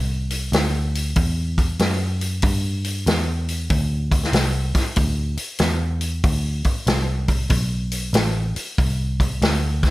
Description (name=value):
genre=blues rock power trio and southern rock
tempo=95 BPM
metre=4/4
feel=swing 65% on 8ths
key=D mixolydian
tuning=A4 = 440 Hz
part: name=vintage muted picked electric bass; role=bass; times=0.0-9.9 s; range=A1 to G2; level=-22 LUFS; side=equal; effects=none
part: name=vintage drum kit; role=drums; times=0.3-9.9 s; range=hi-hat, kick drum, snare drum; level=-21 LUFS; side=equal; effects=none
room=little or no reverb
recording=none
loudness=-19 LUFS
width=side -18 dB against mid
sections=0.0-9.9 A section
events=none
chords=none